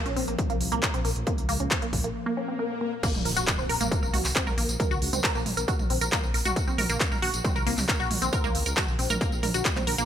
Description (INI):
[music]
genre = driving peak-time techno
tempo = 136 BPM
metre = 4/4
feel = straight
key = Bb minor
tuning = A4 = 442 Hz
[part]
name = deep dark ambient pad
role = drone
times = 0.0-2.1 s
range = Bb2 to F3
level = -39 LUFS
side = left 2 dB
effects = chorus, built-in reverb, sidechain pumping
[part]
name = resonant blip pluck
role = riff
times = 0.1-10.1 s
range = Bb3 to Bb4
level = -29 LUFS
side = equal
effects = phaser, tube saturation, sidechain pumping, ping-pong delay
[part]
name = dark detuned saw bass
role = bass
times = 0.1-10.1 s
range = Bb1 to Db2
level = -31 LUFS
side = equal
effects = sidechain pumping
[part]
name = techno drum kit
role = drums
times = 0.1-10.1 s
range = crash cymbal, handclaps, hi-hat, tambourine, toms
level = -29 LUFS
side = right 1 dB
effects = sidechain pumping on hats, sidechain pumping on cymbals, sidechain pumping on perc, sidechain pumping on toms
[part]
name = electronic kick drum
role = drums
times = 0.4-9.7 s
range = none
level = -29 LUFS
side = equal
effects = none
[part]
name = swell and impact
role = sound effects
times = 2.3-4.8 s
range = none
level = -36 LUFS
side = left 2 dB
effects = none
[sound]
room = light reverb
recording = bright 1980s-style digital production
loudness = -24 LUFS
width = side -9 dB against mid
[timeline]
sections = 0.0-3.0 A section; 3.0-10.1 B section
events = break 2.2-3.0; swell 2.3-3.0; drop 3.0-10.1; impact 3.0-4.8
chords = 0.0 Bb5; 3.0 Bbsus2